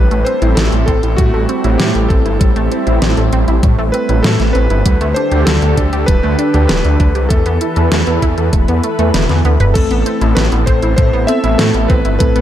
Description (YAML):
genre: synthwave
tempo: 98 BPM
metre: 4/4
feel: straight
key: A minor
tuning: A4 = 440 Hz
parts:
  - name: clear electric grand piano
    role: melody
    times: 0.0-12.4 s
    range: F#4 to E5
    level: -20 LUFS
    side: left 1 dB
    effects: tape echo
  - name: lush unison pad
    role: sustained chords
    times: 0.0-12.4 s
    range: D3 to B4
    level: -20 LUFS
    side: equal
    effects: chorus, sidechain pumping
  - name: analog pluck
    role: arpeggios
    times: 0.0-12.4 s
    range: G3 to B4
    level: -20 LUFS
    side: right 2 dB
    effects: chorus, ping-pong delay
  - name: wide detuned saw bass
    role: bass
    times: 0.0-12.4 s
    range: D1 to A2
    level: -14 LUFS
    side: equal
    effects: chorus, tube saturation, sidechain pumping
  - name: pop drum kit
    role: drums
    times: 0.1-12.4 s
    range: crash cymbal, hi-hat, snare drum, toms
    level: -19 LUFS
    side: equal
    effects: overdrive
  - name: electronic kick drum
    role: drums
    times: 0.9-12.3 s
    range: none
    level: -13 LUFS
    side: equal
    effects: overdrive
  - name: bright tine electric piano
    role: stabs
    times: 9.8-12.4 s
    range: A3 to A4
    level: -20 LUFS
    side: left 3 dB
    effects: medium stereo tremolo
room: light reverb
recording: dark, warm production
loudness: -11 LUFS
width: side -11 dB against mid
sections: 0.0-9.8 A section; 9.8-12.4 B section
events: drum fill 9.1-9.8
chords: 0.0 Am7; 4.9 Dsus4; 7.3 Esus4; 9.8 Amadd9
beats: 0.57 1.18 1.80 | 2.41 3.02 3.63 4.25 | 4.86 5.47 6.08 6.69 | 7.31 7.92 8.53 9.14 | 9.76 10.37 10.98 11.59 | 12.21